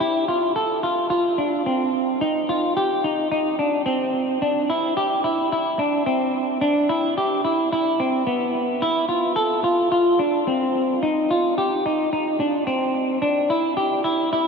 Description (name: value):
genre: dream pop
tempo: 109 BPM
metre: 4/4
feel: straight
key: F lydian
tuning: A4 = 439 Hz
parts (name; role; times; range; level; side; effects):
- semi-hollow electric guitar; solo; 0.0-14.5 s; B3 to A4; -19 LUFS; equal; lush chorus, analog delay
room: wet huge ambient reverb, RT60 7.2 s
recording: dreamy mix soaked in reverb, nothing above 10.7 kHz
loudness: -19 LUFS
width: side -5 dB against mid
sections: 0.0-14.5 A section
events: none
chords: none